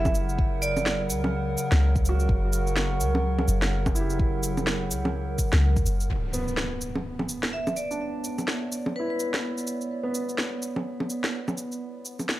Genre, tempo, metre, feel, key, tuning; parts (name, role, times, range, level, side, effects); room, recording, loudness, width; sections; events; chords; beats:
future garage; 126 BPM; 4/4; swing 60% on 16ths; B minor; A4 = 440 Hz
vibraphone with hard mallets; melody; 0.0-1.0, 7.5-9.2 s; B4 to E5; -32 LUFS; right 1 dB; vintage 12-bit sampler grit, tape echo
felt-muted upright piano; accompaniment; 0.0-12.4 s; B3 to G4; -36 LUFS; right 2 dB; sidechain pumping, analog delay
warbly tape-like pad; sustained chords; 0.0-12.4 s; C#3 to F#5; -31 LUFS; right 1 dB; chorus, built-in reverb, sidechain pumping
soft 808-style bass; bass; 0.0-6.1 s; F#1 to C#2; -25 LUFS; equal; sidechain pumping
electronic bongos, shaker, cabasa and snare drum; drums; 0.1-12.4 s; -29 LUFS; equal
electronic kick drum; drums; 0.1-5.8 s; -26 LUFS; equal
impact; sound effects; 6.1-8.0 s; -33 LUFS; equal
light reverb; -24 LUFS; side -15 dB against mid
0.0-6.1 A section; 6.1-12.4 B section
impact 6.1-8.0
0.0 F#7b9; 6.1 Bmadd9
| 0.39 0.86 1.34 1.82 | 2.29 2.77 3.24 3.72 | 4.20 4.67 5.15 5.62 | 6.10 6.58 7.05 7.53 | 8.01 8.48 8.96 9.44 | 9.91 10.39 10.86 11.34 | 11.82 12.29